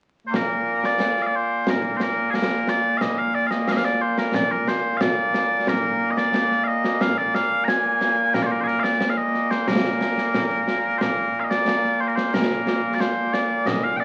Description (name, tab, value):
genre	scottish traditional, Scottish pipe music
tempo	90 BPM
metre	2/4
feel	straight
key	Bb major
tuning	A4 = 439 Hz
part	mellow small bagpipes	melody	0.3-14.0 s	Bb2 to Bb5	-23 LUFS	equal	none
part	concert snare drum and concert bass drum	drums	0.3-13.8 s	none	-28 LUFS	equal	none
room	wet studio reverb, RT60 0.6 s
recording	very old 78 rpm record, vinyl crackle, nothing above 10.9 kHz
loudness	-22 LUFS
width	mono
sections	0.3-11.0 A section; 11.0-14.0 A section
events	none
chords	none